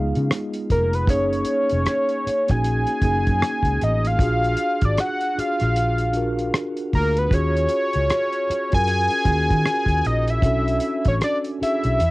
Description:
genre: R&B, neo-soul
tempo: 77 BPM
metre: 4/4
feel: swing 60% on 16ths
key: unclear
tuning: A4 = 440 Hz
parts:
  - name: fat analog lead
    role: melody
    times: 0.0-12.1 s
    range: A#4 to G#5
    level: -22 LUFS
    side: equal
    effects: none
  - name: mellow tine electric piano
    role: accompaniment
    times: 0.0-12.0 s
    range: G#3 to A#4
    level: -26 LUFS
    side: equal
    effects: medium stereo tremolo, cassette tape
  - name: vintage muted fingered electric bass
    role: bass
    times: 0.0-12.1 s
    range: E#1 to D#3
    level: -22 LUFS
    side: equal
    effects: none
  - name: cloth-damped thuddy drum kit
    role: drums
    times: 0.2-12.1 s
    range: hi-hat, kick drum, rim click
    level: -23 LUFS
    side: equal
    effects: none
room: little or no reverb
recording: home recording on cassette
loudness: -18 LUFS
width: side -20 dB against mid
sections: 0.0-12.1 A section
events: none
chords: 0.0 C#7; 1.1 F#6; 4.2 A#7b13; 7.3 D#m11; 10.4 Bm9

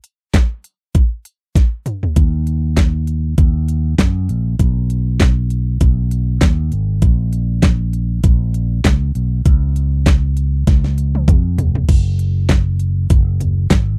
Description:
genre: piano-driven pop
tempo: 99 BPM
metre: 4/4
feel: swing 56% on 16ths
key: unclear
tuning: A4 = 440 Hz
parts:
  - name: pop drum kit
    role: drums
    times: 0.0-13.9 s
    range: crash cymbal, handclaps, hi-hat, kick drum, snare drum, toms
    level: -15 LUFS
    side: equal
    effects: none
  - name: fingered electric bass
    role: bass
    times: 2.2-14.0 s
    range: F1 to Gb2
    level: -18 LUFS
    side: equal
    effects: none
room: little or no reverb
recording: dry, close 1970s-style studio recording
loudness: -16 LUFS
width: mono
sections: 0.0-11.9 A section; 11.9-14.0 B section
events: drum fill 1.6-2.2, 10.7-11.9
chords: none

